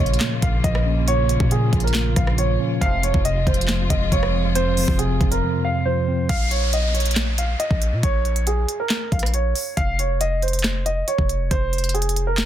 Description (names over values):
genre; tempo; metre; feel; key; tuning
hip hop, trap; 138 BPM; 4/4; half-time; Bb minor; A4 = 440 Hz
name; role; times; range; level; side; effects
dark baby grand piano; melody; 0.0-12.5 s; Ab4 to F5; -24 LUFS; right 3 dB; low-pass filter
mellow tine electric piano; accompaniment; 0.0-6.3 s; F2 to Db4; -23 LUFS; left 1 dB; medium stereo tremolo, low-pass filter
warm symphonic string section; sustained chords; 0.0-6.3 s; C3 to F4; -30 LUFS; left 1 dB; none
warm 808-style bass; bass; 0.0-12.5 s; F1 to Bb2; -22 LUFS; equal; none
trap drum kit; drums; 0.1-12.5 s; handclaps, hi-hat, kick drum, rim click, snare drum; -22 LUFS; equal; overdrive
clear brass ensemble; stabs; 2.8-3.2 s; Ab2 to F3; -32 LUFS; right 6 dB; none
downlifter; sound effects; 6.3-9.8 s; none; -30 LUFS; equal; none
room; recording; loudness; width
digital ambience; dense, heavily limited modern master; -18 LUFS; side -11 dB against mid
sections
0.0-6.3 A section; 6.3-12.5 B section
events
silent gap 5.4-6.3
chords
0.0 Bbm; 2.8 Fm; 6.3 Bbm; 9.8 F5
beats
0.21 0.64 | 1.08 1.51 1.95 2.38 | 2.81 3.25 3.69 4.12 | 4.55 4.99 5.42 5.86 | 6.29 6.73 7.16 7.60 | 8.03 8.47 8.90 9.34 | 9.77 10.21 10.64 11.08 | 11.51 11.95 12.38